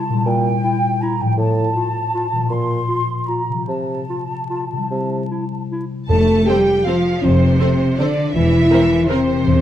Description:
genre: classical, orchestral ballroom waltz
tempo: 140-175 BPM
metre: 3/4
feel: rubato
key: F major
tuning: A4 = 443 Hz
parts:
  - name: mellow large flute ensemble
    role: second line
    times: 0.0-5.7 s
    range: G5 to C6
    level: -23 LUFS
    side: right 1 dB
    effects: none
  - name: warm clarinet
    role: second line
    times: 0.0-5.9 s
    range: E4 to F4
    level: -28 LUFS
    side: equal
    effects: none
  - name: concert harp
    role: arpeggios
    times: 0.0-9.6 s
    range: A2 to C6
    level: -23 LUFS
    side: left 4 dB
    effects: none
  - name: mellow bassoon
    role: accompaniment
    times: 0.3-5.2 s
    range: A2 to C3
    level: -24 LUFS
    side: right 3 dB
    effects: none
  - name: rich symphonic violin section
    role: second line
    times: 6.1-9.6 s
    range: C5 to A5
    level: -25 LUFS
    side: right 2 dB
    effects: none
  - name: dark French horn section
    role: sustained chords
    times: 6.1-9.6 s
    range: C4 to A4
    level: -16 LUFS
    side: left 1 dB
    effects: none
  - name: rich symphonic cello section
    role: bass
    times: 6.1-9.6 s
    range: C3 to A3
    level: -20 LUFS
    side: right 2 dB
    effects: none
  - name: rich symphonic double bass section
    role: bass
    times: 6.1-9.6 s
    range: E1 to F1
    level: -19 LUFS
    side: right 1 dB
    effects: none
  - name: timpani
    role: percussion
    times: 6.1-6.6 s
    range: F2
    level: -23 LUFS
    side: equal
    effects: none
  - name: rich symphonic violin section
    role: melody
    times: 6.5-9.2 s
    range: C5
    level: -30 LUFS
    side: left 3 dB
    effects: none
  - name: clear symphonic viola section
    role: accompaniment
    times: 6.5-9.2 s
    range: C4 to Bb4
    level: -26 LUFS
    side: right 1 dB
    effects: none
room: moderate recital hall reverb, RT60 1.5 s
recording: close, detailed microphones, vinyl crackle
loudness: -15 LUFS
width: side -11 dB against mid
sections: 0.0-6.1 A section; 6.1-9.6 B section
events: none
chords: 0.3 C7/Bb; 1.4 F/A; 2.5 Bb; 3.7 F/C; 4.9 C; 6.1 F; 8.3 C7/E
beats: | 0.27 0.64 1.02 | 1.38 1.75 2.14 | 2.51 2.88 3.28 | 3.67 4.08 4.50 | 4.89 5.29 5.71 | 6.09 6.47 6.86 | 7.22 7.59 7.98 | 8.35 8.71 9.10 | 9.46

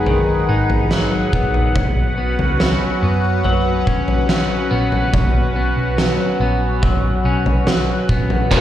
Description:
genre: dream pop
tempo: 71 BPM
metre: 4/4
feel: straight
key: B major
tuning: A4 = 440 Hz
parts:
  - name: phased analog pad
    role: sustained chords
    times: 0.0-8.6 s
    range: C#4 to B5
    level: -21 LUFS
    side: equal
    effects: phaser, chorus
  - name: electric guitar at the edge of break-up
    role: arpeggios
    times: 0.0-8.6 s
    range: G#2 to D#4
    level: -21 LUFS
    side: left 2 dB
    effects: lush chorus, tape echo
  - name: vintage muted picked electric bass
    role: bass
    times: 0.0-8.6 s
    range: F#1 to F#2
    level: -21 LUFS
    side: right 1 dB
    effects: none
  - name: oversized low-tuned drum kit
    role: drums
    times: 0.1-8.6 s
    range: crash cymbal, kick drum, snare drum, tambourine, toms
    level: -19 LUFS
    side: equal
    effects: none
  - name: overdriven electric guitar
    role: accompaniment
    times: 8.5-8.6 s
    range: B2 to F#4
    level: -18 LUFS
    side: right 4 dB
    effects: tremolo, wide subtle chorus
room: moderate plate reverb, RT60 2.7 s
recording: played on a big sound system in a bare room, large studio reverb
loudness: -15 LUFS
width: side -12 dB against mid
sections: 0.0-8.5 A section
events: none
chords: 0.0 G#m7; 1.8 Bsus2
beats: 0.07 0.91 | 1.75 2.60 3.45 4.29 | 5.14 5.98 6.83 7.67 | 8.52

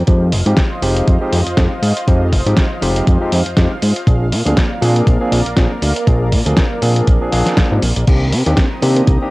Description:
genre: nu-disco, nu disco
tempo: 120 BPM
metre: 4/4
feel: swing 56% on 16ths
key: unclear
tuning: A4 = 444 Hz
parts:
  - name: lush unison pad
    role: sustained chords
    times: 0.0-9.3 s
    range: Bb3 to Eb6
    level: -24 LUFS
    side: right 1 dB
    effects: chorus, sidechain pumping, cassette tape
  - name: fat analog bass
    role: bass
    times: 0.0-9.2 s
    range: F1 to C3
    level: -15 LUFS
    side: equal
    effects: none
  - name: barky tine electric piano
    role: accompaniment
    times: 0.1-9.3 s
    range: Eb3 to Ab4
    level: -20 LUFS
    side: equal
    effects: medium stereo tremolo, sidechain pumping, cassette tape, analog delay
  - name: dusty soul sampler-style drum kit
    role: drums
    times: 0.1-9.2 s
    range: crash cymbal, hi-hat, snare drum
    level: -20 LUFS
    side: equal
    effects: cassette tape
  - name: electronic kick drum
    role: drums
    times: 0.1-9.2 s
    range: none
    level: -14 LUFS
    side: equal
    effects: cassette tape
  - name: soft octave-layered synth lead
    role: melody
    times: 8.8-9.0 s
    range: Bb4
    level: -23 LUFS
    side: left 2 dB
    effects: chorus, tremolo, analog delay
room: light reverb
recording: home recording on cassette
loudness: -12 LUFS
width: side -21 dB against mid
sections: 0.0-9.3 A section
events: none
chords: 0.0 Fm7; 4.1 Bb7; 8.1 Cm7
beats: | 0.07 0.57 1.07 1.57 | 2.07 2.57 3.07 3.57 | 4.07 4.57 5.07 5.57 | 6.07 6.57 7.07 7.57 | 8.07 8.57 9.07

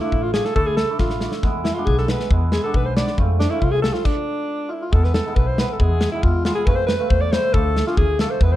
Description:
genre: klezmer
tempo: 138 BPM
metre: 2/4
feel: straight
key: unclear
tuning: A4 = 441 Hz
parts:
  - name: clear alto saxophone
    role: melody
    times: 0.0-8.6 s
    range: D4 to D5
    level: -23 LUFS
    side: left 1 dB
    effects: slapback echo, plate reverb
  - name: cimbalom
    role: accompaniment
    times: 0.0-8.6 s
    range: G#3 to G#4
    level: -27 LUFS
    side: right 3 dB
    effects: none
  - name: upright bass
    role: bass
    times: 0.1-8.6 s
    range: A1 to F2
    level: -21 LUFS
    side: equal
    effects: none
  - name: modern studio drum kit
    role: drums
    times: 0.1-8.5 s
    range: crash cymbal, kick drum, snare drum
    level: -22 LUFS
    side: left 1 dB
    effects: none
room: light reverb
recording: dark, warm production, tape saturation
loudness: -17 LUFS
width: side -14 dB against mid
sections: 0.0-4.9 A section; 4.9-8.6 B section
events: drum fill 1.0-1.4; stop 4.1-4.9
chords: 0.0 Dm; 1.4 E; 3.2 F; 4.1 N.C.; 4.9 E; 6.7 F; 7.5 Dm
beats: 0.13 | 0.56 1.00 | 1.44 1.87 | 2.31 2.74 | 3.18 3.62 | 4.05 4.49 | 4.92 5.36 | 5.79 6.23 | 6.67 7.10 | 7.54 7.97 | 8.41

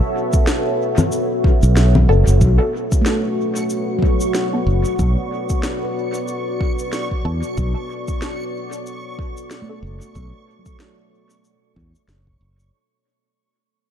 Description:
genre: ambient dub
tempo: 93 BPM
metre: 4/4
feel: swing 57% on 16ths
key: B minor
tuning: A4 = 439 Hz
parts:
  - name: deep dark ambient pad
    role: sustained chords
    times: 0.0-12.7 s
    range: B3 to E5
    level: -23 LUFS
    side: left 1 dB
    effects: chorus, built-in reverb
  - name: electronic kick drum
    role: drums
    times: 0.3-12.4 s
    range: none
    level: -19 LUFS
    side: equal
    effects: none
  - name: electronic shaker, snare drum and congas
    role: drums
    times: 0.3-12.7 s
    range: none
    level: -23 LUFS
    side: left 2 dB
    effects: dub echo
  - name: modern bright fingered electric bass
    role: bass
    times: 1.6-12.7 s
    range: F#1 to E2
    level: -14 LUFS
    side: equal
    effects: none
  - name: filtered dub chord stab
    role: stabs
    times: 2.1-12.5 s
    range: B3 to A4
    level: -27 LUFS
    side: left 3 dB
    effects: phaser, wide subtle chorus, dub echo
  - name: backwards swelling texture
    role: texture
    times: 3.2-12.8 s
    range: C#6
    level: -35 LUFS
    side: right 6 dB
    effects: built-in reverb
  - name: handpan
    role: arpeggios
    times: 3.0-12.3 s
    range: F#3 to B4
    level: -27 LUFS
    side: right 3 dB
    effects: low-pass filter, tape echo
room: light reverb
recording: dark, warm production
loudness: -16 LUFS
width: side -9 dB against mid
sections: 0.0-2.4 A section; 2.4-12.7 B section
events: fade-out 2.4-12.7; filter sweep on synth stab 2.4-12.7; filter sweep on handpan 2.4-12.7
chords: 0.0 B7(no3); 2.4 Bm7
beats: 0.47 1.12 1.76 | 2.41 3.06 3.70 4.34 | 4.99 5.64 6.28 6.93 | 7.57 8.22 8.86 9.51 | 10.15 10.80 11.44 12.09

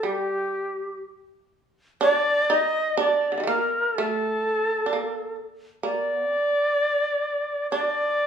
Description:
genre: japanese traditional, Japanese chamber music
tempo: 62 BPM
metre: 2/4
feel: rubato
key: unclear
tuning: A4 = 440 Hz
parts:
  - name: bright reedy shakuhachi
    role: melody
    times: 0.0-8.3 s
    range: G4 to Eb5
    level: -23 LUFS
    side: left 1 dB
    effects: none
  - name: shamisen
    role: second line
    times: 0.0-8.3 s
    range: D3 to Eb4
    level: -27 LUFS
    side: right 5 dB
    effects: none
room: moderate recital hall reverb, RT60 1.3 s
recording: studio reverb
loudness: -22 LUFS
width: side -7 dB against mid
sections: 0.0-2.0 A section; 2.0-8.3 B section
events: none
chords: none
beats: | 0.04 1.01 | 1.99 2.97 | 3.94 4.90 | 5.83 6.77 | 7.71

